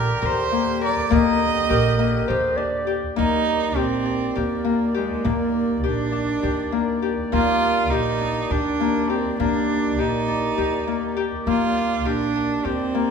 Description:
contemporary instrumental, chamber music in an uneven meter; 203 BPM (eighths); 7/8; straight; Eb major; A4 = 440 Hz
rich cello; melody; 0.0-13.1 s; Ab3 to Eb5; -24 LUFS; right 6 dB
warm woodwind section; sustained chords; 0.0-13.1 s; D3 to D5; -30 LUFS; left 1 dB
Celtic harp; arpeggios; 0.0-13.1 s; Bb3 to Bb4; -23 LUFS; left 7 dB
upright bass; bass; 0.0-13.1 s; Bb1 to Eb2; -28 LUFS; right 2 dB
dark clarinet; second line; 1.7-3.2 s; Bb4 to D5; -25 LUFS; right 1 dB
wet recital hall reverb, RT60 1.8 s; recorded in a church or concert hall; -19 LUFS; side -6 dB against mid
0.0-3.2 A section; 3.2-13.1 B section
0.0 Ebmaj7
0.23 0.52 0.82 | 1.11 1.41 1.70 2.00 2.29 2.59 2.89 | 3.18 3.48 3.77 4.07 4.37 4.66 4.96 | 5.25 5.55 5.84 6.14 6.44 6.73 7.03 | 7.33 7.62 7.92 8.21 8.51 8.81 9.10 | 9.40 9.70 9.99 10.29 10.58 10.88 11.17 | 11.47 11.77 12.06 12.36 12.65 12.95

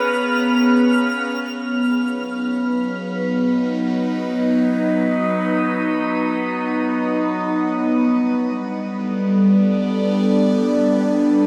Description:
ambient; free time; B lydian; A4 = 440 Hz
warm flugelhorn; melody; 0.0-0.8 s; B4; -29 LUFS; equal; tape echo
evolving wavetable pad; sustained chords; 0.0-11.5 s; F#3 to E#5; -19 LUFS; equal; phaser, built-in reverb
twinkling granular texture; texture; 0.0-1.6 s; E#6; -30 LUFS; equal; built-in reverb
organ-like drone; drone; 6.5-11.5 s; B3 to B4; -37 LUFS; equal
wet shimmer reverb, RT60 6.8 s; -19 LUFS; mono
0.0-1.6 A section; 1.6-11.5 B section
0.0 C#7; 1.6 B; 7.8 Gadd9
free time

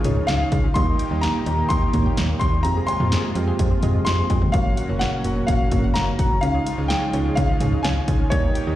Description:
synth-pop; 127 BPM; 4/4; straight; A4 = 444 Hz
clear concert grand piano; melody; 0.0-8.8 s; Bb4 to C6; -26 LUFS; left 2 dB; tape echo
soft electric-piano-like synth keys; accompaniment; 0.0-8.8 s; Bb3 to Eb5; -28 LUFS; right 4 dB; chorus
brassy analog pad; sustained chords; 0.0-8.8 s; Bb2 to G4; -29 LUFS; equal; chorus
wide unison pluck; arpeggios; 0.0-8.7 s; Gb3 to G5; -31 LUFS; left 1 dB; tape echo
slap-like FM bass; bass; 0.0-8.8 s; Gb1 to F2; -23 LUFS; equal
punchy analog drum machine; drums; 0.0-8.7 s; cowbell, hi-hat, kick drum, snare drum, toms; -22 LUFS; equal
light reverb, digital ambience; played on a big sound system in a bare room, large studio reverb; -18 LUFS; side -13 dB against mid
0.0-8.8 A section
0.0 Dbadd9; 0.8 Eb; 2.6 Fmadd9; 4.5 Gb; 6.4 Dbadd9
0.28 | 0.76 1.23 1.70 2.17 | 2.65 3.12 3.59 4.06 | 4.54 5.01 5.48 5.95 | 6.43 6.90 7.37 7.84 | 8.32

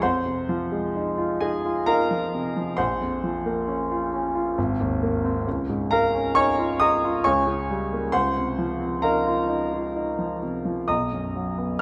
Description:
classical, impressionist solo piano; 66 BPM; 3/4; rubato; A4 = 435 Hz
clear grand piano; solo; 0.0-11.8 s; Ab1 to Eb6; -24 LUFS; equal
moderate scoring stage reverb, RT60 1.8 s; -24 LUFS; mono
0.0-11.8 A section
0.0 Fm7; 2.8 Bbmadd9; 4.6 Abadd9; 5.5 Db69; 7.2 Bbm6/Db; 8.1 F7sus4/Db; 10.9 Bmaj7
| 0.03 0.96 1.88 | 2.79 3.69 4.58 | 5.46 6.36 7.24 | 8.12 9.03 9.96 | 10.89 11.79

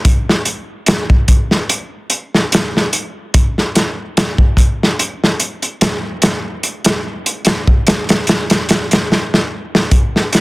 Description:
trip hop; 73 BPM; 4/4; swing 55% on 16ths
crunchy breakbeat drum kit; drums; 0.0-10.4 s; hi-hat, kick drum, snare drum; -12 LUFS; equal
light reverb; dense, heavily limited modern master; -13 LUFS; side -22 dB against mid
0.0-9.9 A section
drum fill 9.1-9.9
| 0.06 0.88 1.70 2.52 | 3.34 4.16 4.99 5.81 | 6.63 7.45 8.27 9.10 | 9.92

